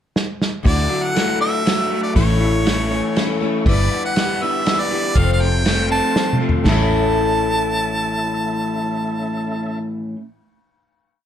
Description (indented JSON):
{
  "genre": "folk rock and heartland rock",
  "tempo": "120 BPM",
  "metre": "3/4",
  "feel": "straight",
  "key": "A mixolydian",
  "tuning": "A4 = 441 Hz",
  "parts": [
    { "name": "unplugged drum kit", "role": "drums", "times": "0.2-6.8 s", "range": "crash cymbal, kick drum, ride cymbal, snare drum, toms", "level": "-21 LUFS", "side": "equal", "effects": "none" },
    { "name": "picked plugged-in old ladder-braced acoustic guitar", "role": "accompaniment", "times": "0.6-10.2 s", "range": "A2 to B4", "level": "-24 LUFS", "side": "left 7 dB", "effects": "none" },
    { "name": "electric guitar through a small old amp", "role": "riff", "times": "0.6-10.2 s", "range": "F2 to E4", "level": "-23 LUFS", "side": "equal", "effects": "none" },
    { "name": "bright harmonica", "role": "melody", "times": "0.7-9.8 s", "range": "C#5 to A5", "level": "-22 LUFS", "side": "right 2 dB", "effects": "slapback echo" },
    { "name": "tonewheel organ", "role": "sustained chords", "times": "0.7-9.8 s", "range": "C#4 to D6", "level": "-32 LUFS", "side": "equal", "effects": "slow rotary speaker, chorus vibrato" },
    { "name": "fingered electric bass", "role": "bass", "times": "0.7-9.8 s", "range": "F1 to D2", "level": "-20 LUFS", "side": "equal", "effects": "none" }
  ],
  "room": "light reverb",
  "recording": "dark, warm production",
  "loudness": "-16 LUFS",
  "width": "side -9 dB against mid",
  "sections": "0.0-0.6 pickup bar; 0.6-6.7 pre-chorus; 6.7-9.7 final chord",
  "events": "drum fill 0.1-0.6, 6.2-6.7",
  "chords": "0.0 N.C.; 0.6 Dadd9; 2.2 A; 3.7 G6; 5.2 F; 6.7 A"
}